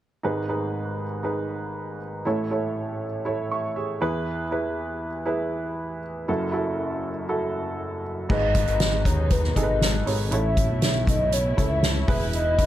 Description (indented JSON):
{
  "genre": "piano-driven pop",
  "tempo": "119 BPM",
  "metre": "4/4",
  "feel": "straight",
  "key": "unclear",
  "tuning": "A4 = 438 Hz",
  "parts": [
    { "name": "warm upright piano", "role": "accompaniment", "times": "0.2-12.7 s", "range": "F#1 to C#6", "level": "-27 LUFS", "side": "right 1 dB", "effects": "plate reverb" },
    { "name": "hollow clarinet-like synth lead", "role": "melody", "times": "8.3-12.7 s", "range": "B4 to E5", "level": "-26 LUFS", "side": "left 1 dB", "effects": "chorus, plate reverb" },
    { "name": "muted studio string section", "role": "sustained chords", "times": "8.3-12.7 s", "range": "B2 to E4", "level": "-35 LUFS", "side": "left 2 dB", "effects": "plate reverb" },
    { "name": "chorused synth bass", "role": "bass", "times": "8.3-12.7 s", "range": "E1 to D#2", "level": "-25 LUFS", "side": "equal", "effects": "none" },
    { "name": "soft-mallet drum kit", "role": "drums", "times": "8.3-12.7 s", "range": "crash cymbal, hi-hat, kick drum, snare drum", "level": "-24 LUFS", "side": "equal", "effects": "none" }
  ],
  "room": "light reverb",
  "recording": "none",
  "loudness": "-23 LUFS",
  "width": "side -13 dB against mid",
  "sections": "0.2-8.3 A section; 8.3-12.7 B section",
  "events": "none",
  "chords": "0.2 G#m; 2.2 A; 4.0 E; 6.3 F#m7; 8.3 G#m; 10.3 A; 12.1 E"
}